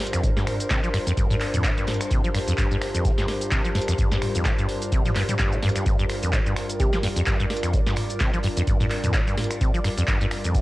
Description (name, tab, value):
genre	acid house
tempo	128 BPM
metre	4/4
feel	swing 56% on 16ths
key	G minor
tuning	A4 = 440 Hz
part	warbly tape-like pad	sustained chords	0.0-10.6 s	G2 to D5	-32 LUFS	left 1 dB	chorus, built-in reverb, sidechain pumping, cassette tape
part	booming analog drum machine	drums	0.0-10.6 s	finger snaps, handclaps, hi-hat, shaker, snare drum, toms	-28 LUFS	equal	cassette tape
part	warm soul drum kit	drums	0.0-10.6 s	none	barely audible	none	none
part	airy breathy pad	texture	0.0-10.6 s	G3 to D5	-32 LUFS	equal	chorus, sidechain pumping, cassette tape
part	acid bass, saw	riff	0.1-10.6 s	F2 to G3	-26 LUFS	equal	wide subtle chorus, cassette tape, analog delay
part	electronic kick drum	drums	0.2-10.6 s	none	-24 LUFS	equal	cassette tape
part	glassy wavetable pluck	melody	6.8-7.2 s	G4	-34 LUFS	right 2 dB	chorus, cassette tape, analog delay
room	light reverb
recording	home recording on cassette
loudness	-21 LUFS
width	side -18 dB against mid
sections	0.0-10.6 A section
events	none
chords	0.0 Gm